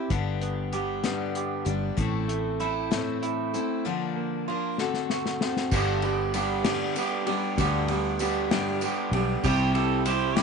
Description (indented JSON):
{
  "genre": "folk rock and heartland rock",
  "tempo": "64 BPM (dotted quarters)",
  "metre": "6/8",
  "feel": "straight",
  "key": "unclear",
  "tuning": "A4 = 440 Hz",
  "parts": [
    { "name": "picked steel-string acoustic guitar", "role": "accompaniment", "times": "0.0-10.4 s", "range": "G2 to Bb4", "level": "-30 LUFS", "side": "left 11 dB", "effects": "none" },
    { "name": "electric guitar through a small old amp", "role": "riff", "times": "0.0-10.4 s", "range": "G2 to G4", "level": "-29 LUFS", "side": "right 13 dB", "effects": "none" },
    { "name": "fingered electric bass", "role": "bass", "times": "0.1-10.4 s", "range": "G1 to D2", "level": "-30 LUFS", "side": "equal", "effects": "none" },
    { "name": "unplugged drum kit", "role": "drums", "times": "0.1-10.4 s", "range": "crash cymbal, hi-hat, kick drum, ride cymbal, snare drum", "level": "-31 LUFS", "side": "left 4 dB", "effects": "none" },
    { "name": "tambourine", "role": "percussion", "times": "5.7-10.2 s", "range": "none", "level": "-42 LUFS", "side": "right 15 dB", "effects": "none" },
    { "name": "pedal steel guitar", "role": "second line", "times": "9.4-10.4 s", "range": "G4 to D5", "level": "-28 LUFS", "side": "right 12 dB", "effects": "none" }
  ],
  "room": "light reverb",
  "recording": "1960s-style stereo with parts hard left and right, nothing above 10.5 kHz",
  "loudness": "-24 LUFS",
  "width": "side -5 dB against mid",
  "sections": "0.0-5.7 A section; 5.7-10.4 B section",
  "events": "drum fill 4.8-5.7",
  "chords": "0.1 G; 2.0 Am; 3.8 Bb; 4.8 D7; 5.7 G; 9.4 C"
}